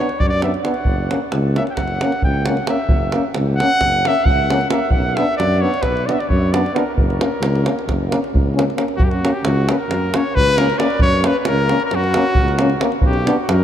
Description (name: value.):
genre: balkan folk, Balkan brass band.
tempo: 266 BPM (eighths).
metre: 9/8.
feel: straight.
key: F# phrygian dominant.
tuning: A4 = 441 Hz.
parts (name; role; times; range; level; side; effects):
clear cornet; melody; 0.0-13.6 s; F#4 to G5; -20 LUFS; left 1 dB; none.
clear euphonium; accompaniment; 0.0-13.3 s; C#4 to D4; -24 LUFS; left 3 dB; none.
clear trombone; accompaniment; 0.0-13.4 s; A#3 to B3; -25 LUFS; right 3 dB; none.
davul; percussion; 0.1-13.6 s; none; -20 LUFS; right 1 dB; none.
mellow tuba; bass; 0.2-13.6 s; F#1 to F#2; -20 LUFS; equal; none.
room: wet cathedral reverb, RT60 6.5 s.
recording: in a vast, echoing space.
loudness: -15 LUFS.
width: side -10 dB against mid.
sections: 0.0-9.0 A section; 9.0-13.6 B section.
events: cornet solo 0.0-9.0.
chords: 0.0 Bm; 0.8 F#; 4.9 Bm; 6.9 F#; 13.0 Bm.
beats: 0.17 0.40 0.62 | 0.85 1.07 1.30 1.53 1.75 1.98 2.21 2.43 2.66 | 2.88 3.11 3.33 3.56 3.79 4.01 4.24 4.46 4.69 | 4.92 5.14 5.37 5.59 5.82 6.04 6.27 6.50 6.72 | 6.95 7.17 7.40 7.62 7.85 8.07 8.30 8.52 8.75 | 8.97 9.20 9.42 9.65 9.88 10.10 10.32 10.55 10.78 | 11.00 11.22 11.45 11.68 11.90 12.13 12.35 12.58 12.80 | 13.03 13.25 13.48.